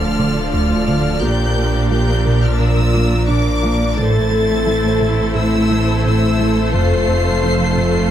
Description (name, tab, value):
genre	cinematic, hybrid orchestral and electronic film score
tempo	87 BPM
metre	4/4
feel	straight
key	A minor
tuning	A4 = 439 Hz
part	warm symphonic violin section	melody	0.0-8.1 s	D6 to C7	-25 LUFS	left 1 dB	none
part	clear symphonic violin section	second line	0.0-8.1 s	A4 to D5	-25 LUFS	left 2 dB	none
part	clear symphonic viola section	accompaniment	0.0-8.1 s	F3 to F4	-23 LUFS	equal	none
part	airy breathy pad	sustained chords	0.0-8.1 s	F3 to F5	-26 LUFS	equal	chorus, phaser
part	dark French horn section	sustained chords	0.0-8.1 s	D4 to C5	-23 LUFS	left 4 dB	none
part	thumb-piano-like synth pluck	arpeggios	0.0-8.0 s	F3 to Bb4	-28 LUFS	right 3 dB	none
part	smooth gliding synth bass	riff	0.0-8.0 s	D2 to Bb3	-22 LUFS	right 1 dB	none
part	pure sine sub bass	bass	0.0-8.1 s	D1 to Bb1	-23 LUFS	equal	none
part	rich studio double bass section	bass	0.0-8.1 s	F1 to D2	-21 LUFS	right 2 dB	none
part	rich symphonic cello section	bass	0.0-8.1 s	D2 to Bb2	-22 LUFS	right 2 dB	none
room	light reverb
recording	close, detailed microphones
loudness	-13 LUFS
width	side -10 dB against mid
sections	0.0-8.1 A section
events	none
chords	0.0 Dm; 1.2 Bb; 4.0 Am; 6.7 F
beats	0.53 | 1.22 1.91 2.60 3.29 | 3.98 4.67 5.36 6.05 | 6.74 7.43